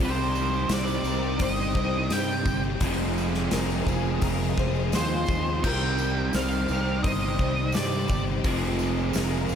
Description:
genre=rock, shoegaze and dream pop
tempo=85 BPM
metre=4/4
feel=straight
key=C minor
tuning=A4 = 440 Hz
part: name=octave-fuzz lead guitar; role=melody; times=0.0-8.2 s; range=C5 to G5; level=-32 LUFS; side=right 2 dB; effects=distortion, digital delay
part: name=phased string machine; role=sustained chords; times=0.0-9.6 s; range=Eb4 to Eb6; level=-36 LUFS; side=equal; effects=ensemble chorus, phaser
part: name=picked twelve-string acoustic guitar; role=arpeggios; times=0.0-9.6 s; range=F4 to Eb5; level=-36 LUFS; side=left 4 dB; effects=ensemble chorus, digital delay
part: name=crunchy overdriven guitar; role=riff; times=0.0-9.6 s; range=F2 to C4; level=-31 LUFS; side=equal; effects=none
part: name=overdriven electric guitar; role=riff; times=0.0-9.6 s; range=F2 to Ab4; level=-34 LUFS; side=left 11 dB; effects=ensemble chorus
part: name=overdriven electric guitar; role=riff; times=0.0-9.6 s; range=F2 to Ab4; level=-32 LUFS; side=right 10 dB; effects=reverse reverb
part: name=fuzz fingered electric bass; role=bass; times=0.0-9.6 s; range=F1 to G2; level=-29 LUFS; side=equal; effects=overdrive
part: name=tambourine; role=percussion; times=0.0-9.6 s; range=none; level=-44 LUFS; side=right 15 dB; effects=none
part: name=big rock drum kit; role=drums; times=0.7-9.3 s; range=crash cymbal, hi-hat, kick drum, snare drum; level=-30 LUFS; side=left 1 dB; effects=none
room=light reverb, studio ambience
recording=none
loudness=-23 LUFS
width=side -8 dB against mid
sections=0.0-9.6 A section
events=none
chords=0.0 Cmadd9; 2.8 Fm7; 5.6 Cmadd9; 8.4 Fm7

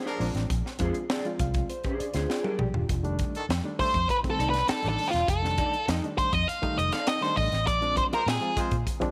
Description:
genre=funk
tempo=100 BPM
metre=4/4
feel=straight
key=F mixolydian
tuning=A4 = 438 Hz
part: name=clear horn section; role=second line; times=0.0-4.0, 8.1-8.8 s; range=Eb3 to C5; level=-39 LUFS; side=equal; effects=none
part: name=electric guitar through a small old amp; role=accompaniment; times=0.0-7.4 s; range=D4 to Eb5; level=-38 LUFS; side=equal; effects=analog chorus
part: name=crisp fusion drum kit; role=drums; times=0.1-9.1 s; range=hi-hat, kick drum, snare drum, toms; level=-34 LUFS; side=equal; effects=none
part: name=barky reed electric piano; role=stabs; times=0.2-9.1 s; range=Eb3 to F5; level=-36 LUFS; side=equal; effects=fast tremolo
part: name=vintage muted fingered electric bass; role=bass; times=0.2-9.0 s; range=E1 to Bb2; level=-32 LUFS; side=equal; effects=none
part: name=octave-fuzz lead guitar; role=melody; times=3.8-8.6 s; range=F4 to F5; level=-29 LUFS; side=equal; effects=distortion
room=light reverb, small room ambience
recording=none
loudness=-27 LUFS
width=mono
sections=0.0-2.9 A section; 2.9-9.1 B section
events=reed electric piano fill 1.1-2.9; drum fill 2.3-2.9; lead electric guitar solo 2.9-9.1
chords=0.0 Bb9; 2.9 F13; 7.7 Bb9

